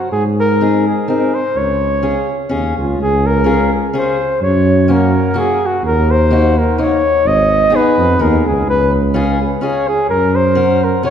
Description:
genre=alpine folk, alpine dance band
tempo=126 BPM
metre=3/4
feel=swing 54% on 8ths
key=Db major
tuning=A4 = 440 Hz
part: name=mellow flugelhorn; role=melody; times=0.0-11.1 s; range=F4 to Eb5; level=-15 LUFS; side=left 1 dB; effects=none
part: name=mellow tuba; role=bass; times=0.1-11.0 s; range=Ab1 to Ab2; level=-16 LUFS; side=right 1 dB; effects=none
part: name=fingerpicked acoustic archtop guitar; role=accompaniment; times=0.6-11.1 s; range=Bb3 to Bb4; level=-20 LUFS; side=left 2 dB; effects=none
room=wet concert hall reverb, RT60 2.3 s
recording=heard from further back in the room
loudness=-11 LUFS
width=side -8 dB against mid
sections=0.0-3.0 A section; 3.0-11.1 A section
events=none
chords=0.1 Ab; 1.6 Db; 4.4 Gb; 5.8 Ebm; 7.2 Abm; 8.7 Db; 10.1 Gb

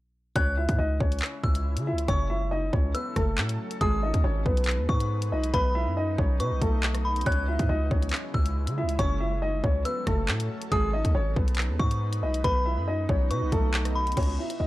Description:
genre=hip hop, drill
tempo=139 BPM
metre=4/4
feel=half-time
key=C# minor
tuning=A4 = 445 Hz
part: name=dark baby grand piano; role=melody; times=0.4-14.7 s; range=G#3 to E5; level=-31 LUFS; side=left 1 dB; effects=low-pass filter
part: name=delicate synth tine bell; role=second line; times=0.4-14.2 s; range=B5 to F#6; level=-33 LUFS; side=left 1 dB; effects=chorus, analog delay
part: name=granular cloud pad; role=sustained chords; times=1.3-14.2 s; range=C#3 to B4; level=-38 LUFS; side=right 1 dB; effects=built-in reverb
part: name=hard-hitting 808-style bass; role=bass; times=0.4-14.7 s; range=F#1 to C#3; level=-27 LUFS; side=equal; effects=none
part: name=drill drum kit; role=drums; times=0.4-14.6 s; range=crash cymbal, handclaps, hi-hat, kick drum, rim click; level=-27 LUFS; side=equal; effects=none
room=little or no reverb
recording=dry, gritty hardware recording, faint mains hum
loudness=-24 LUFS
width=side -17 dB against mid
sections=0.4-14.2 A section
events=none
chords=0.4 C#m; 2.1 F#m; 3.8 G#m; 5.5 B; 7.3 C#m; 9.0 F#m; 10.7 G#m; 12.4 B

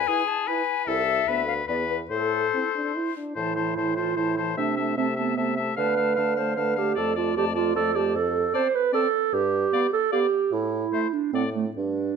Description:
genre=quick classical-period movement for wind quintet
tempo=150 BPM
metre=3/4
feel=rubato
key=A minor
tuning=A4 = 439 Hz
part: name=bright concert flute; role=melody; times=0.0-11.4 s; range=A4 to A5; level=-30 LUFS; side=left 13 dB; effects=none
part: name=clear oboe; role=second line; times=0.0-11.5 s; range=G#4 to F5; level=-29 LUFS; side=left 7 dB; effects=none
part: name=mellow clarinet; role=accompaniment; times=0.1-12.2 s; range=A3 to C5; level=-25 LUFS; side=right 8 dB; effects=none
part: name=warm French horn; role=accompaniment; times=0.1-11.5 s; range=E3 to E4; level=-33 LUFS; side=left 2 dB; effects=none
part: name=mellow bassoon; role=bass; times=0.9-12.1 s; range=C2 to D3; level=-31 LUFS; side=right 1 dB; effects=none
room=moderate recital hall reverb, RT60 1.4 s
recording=close, detailed microphones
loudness=-22 LUFS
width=side -6 dB against mid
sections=0.0-3.4 A section; 3.4-12.2 A section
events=none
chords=0.0 E; 0.9 Am/C; 1.3 Bm7/D; 1.7 E; 2.1 Am; 4.6 Am/C; 5.8 Dm; 7.0 Dm/F; 8.1 Dm7/F; 9.3 G; 10.5 A5; 11.3 D7(no3)/A

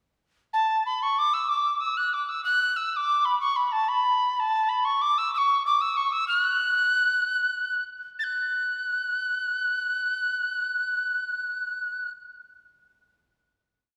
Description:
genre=celtic folk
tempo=126 BPM (dotted quarters)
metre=12/8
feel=straight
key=unclear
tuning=A4 = 440 Hz
part: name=wooden whistle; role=solo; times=0.5-12.1 s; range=A5 to A6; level=-25 LUFS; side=equal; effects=none
room=wet concert hall reverb, RT60 2.0 s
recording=recorded in a church or concert hall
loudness=-25 LUFS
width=mono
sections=0.5-8.2 A section; 8.2-12.0 final note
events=none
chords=none

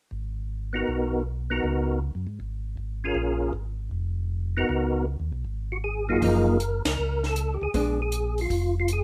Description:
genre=soul jazz organ trio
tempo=157 BPM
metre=4/4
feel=swing 66% on 8ths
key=F# major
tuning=A4 = 440 Hz
part: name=mellow tonewheel organ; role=bass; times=0.1-9.0 s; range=E#1 to G#2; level=-31 LUFS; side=equal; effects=slow rotary speaker
part: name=percussive tonewheel organ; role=melody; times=0.7-9.0 s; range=F#2 to A#4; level=-28 LUFS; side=equal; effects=chorus vibrato, fast rotary speaker
part: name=hollow-body jazz guitar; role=accompaniment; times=6.2-8.0 s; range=E#3 to D#4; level=-31 LUFS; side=equal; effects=none
part: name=compact cocktail drum kit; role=drums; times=6.2-9.0 s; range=hi-hat, kick drum, ride cymbal, snare drum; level=-35 LUFS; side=equal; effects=none
room=light reverb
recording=none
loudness=-27 LUFS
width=mono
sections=0.1-6.2 A section; 6.2-9.0 B section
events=band accent 6.8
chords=0.1 G#m9; 1.6 C#13sus4; 3.2 A#m7; 4.7 C#13sus4; 6.2 F#maj13; 7.7 A#7b9

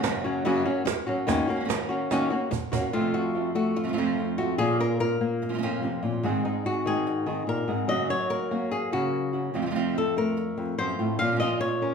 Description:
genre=flamenco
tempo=145 BPM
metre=4/4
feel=straight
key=unclear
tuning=A4 = 440 Hz
part: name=flamenco guitar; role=melody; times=0.0-11.9 s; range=F2 to F5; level=-25 LUFS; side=left 2 dB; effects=slapback echo, plate reverb
part: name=flamenco guitar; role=stabs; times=0.0-11.9 s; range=F2 to Ab4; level=-31 LUFS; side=right 6 dB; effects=none
part: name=cajon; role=percussion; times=0.0-2.8 s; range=none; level=-30 LUFS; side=right 6 dB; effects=none
room=wet large studio reverb, RT60 0.9 s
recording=heard from further back in the room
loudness=-24 LUFS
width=side -6 dB against mid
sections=0.0-2.9 A section; 2.9-11.9 B section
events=drum fill 2.1-2.9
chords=0.0 Gb; 1.3 Ebm7; 2.9 F; 4.6 Bbm; 6.2 Ab; 7.9 Gb; 9.6 F; 11.2 Bbm

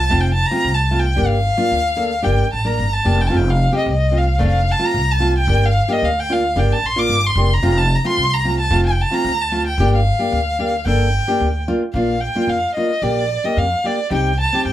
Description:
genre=klezmer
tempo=112 BPM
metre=2/4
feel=straight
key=G minor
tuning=A4 = 441 Hz
part: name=dark violin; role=melody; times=0.0-14.7 s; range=D5 to D6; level=-19 LUFS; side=equal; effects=none
part: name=upright bass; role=bass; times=0.0-14.7 s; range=F1 to G2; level=-18 LUFS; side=equal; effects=none
part: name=nylon-string guitar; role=accompaniment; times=0.1-14.7 s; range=A3 to Bb4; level=-21 LUFS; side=equal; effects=none
room=light reverb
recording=none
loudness=-15 LUFS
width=side -13 dB against mid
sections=0.0-3.3 A section; 3.3-11.9 A section; 11.9-14.7 B section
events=none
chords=0.0 F; 1.2 Gm; 3.3 F; 5.5 Gm; 7.6 F; 9.8 Gm; 11.9 Bb; 14.1 Cm

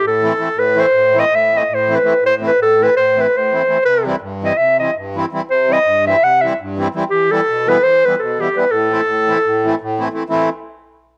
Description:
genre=balkan folk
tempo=332 BPM (eighths)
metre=9/8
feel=straight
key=A minor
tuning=A4 = 440 Hz
part: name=warm clarinet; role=melody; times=0.0-10.0 s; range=G4 to F#5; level=-15 LUFS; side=equal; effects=cassette tape
part: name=accordion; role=accompaniment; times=0.0-10.5 s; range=G2 to E4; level=-23 LUFS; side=equal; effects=cassette tape
room=moderate spring reverb, RT60 1.2 s, small room reverb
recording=home recording on cassette, faint mains hum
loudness=-15 LUFS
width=mono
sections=0.0-10.3 A section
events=speeding up 0.0-11.2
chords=0.0 Am; 3.8 C; 7.1 Em; 8.7 Am

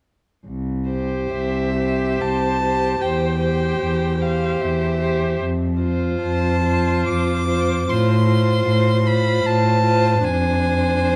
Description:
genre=classical, slow romantic movement for string quartet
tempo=66-77 BPM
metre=3/4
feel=rubato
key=C major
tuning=A4 = 439 Hz
part: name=rich cello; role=bass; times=0.5-11.2 s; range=C2 to A2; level=-23 LUFS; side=equal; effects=none
part: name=rich violin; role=second line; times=0.9-11.2 s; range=C5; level=-27 LUFS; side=equal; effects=none
part: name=rich viola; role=accompaniment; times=0.9-11.2 s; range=D4 to G4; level=-27 LUFS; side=equal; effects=none
part: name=rich violin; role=melody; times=1.3-11.2 s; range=E5 to D6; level=-27 LUFS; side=equal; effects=none
room=moderate stone room reverb, RT60 1.3 s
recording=dark, warm production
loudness=-20 LUFS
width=mono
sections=0.5-11.2 A section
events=none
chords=0.5 C; 3.0 C/E; 5.4 F; 7.9 F/A; 10.2 Dm7b5/F

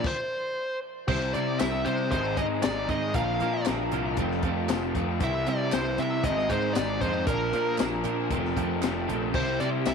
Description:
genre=indie rock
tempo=116 BPM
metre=4/4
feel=straight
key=unclear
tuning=A4 = 439 Hz
part: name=dark smooth lead guitar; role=melody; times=0.0-9.9 s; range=Bb4 to F5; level=-31 LUFS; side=right 1 dB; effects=overdrive, tape echo
part: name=raw garage guitar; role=riff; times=0.0-9.9 s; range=F2 to F4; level=-31 LUFS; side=left 12 dB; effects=overdrive
part: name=twelve-string electric guitar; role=riff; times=0.0-9.9 s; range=F2 to E4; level=-31 LUFS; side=right 14 dB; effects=ensemble chorus, tape echo
part: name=fuzz picked electric bass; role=bass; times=0.0-9.9 s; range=F1 to C3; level=-32 LUFS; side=right 1 dB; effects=overdrive
part: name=compact cocktail drum kit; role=drums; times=0.0-9.9 s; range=crash cymbal, hi-hat, kick drum, snare drum, tambourine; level=-32 LUFS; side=left 4 dB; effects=none
part: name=group handclap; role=percussion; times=1.6-9.9 s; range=none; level=-43 LUFS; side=right 14 dB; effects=none
room=moderate spring reverb, RT60 2.0 s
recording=1960s-style stereo with parts hard left and right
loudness=-25 LUFS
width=side -6 dB against mid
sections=0.0-1.1 A section; 1.1-9.9 B section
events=stop 0.0-1.1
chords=0.0 N.C.; 1.1 C; 2.1 Ab; 3.1 Bb; 4.2 F; 5.2 C; 6.2 Ab; 7.3 Bb; 8.3 F; 9.3 C

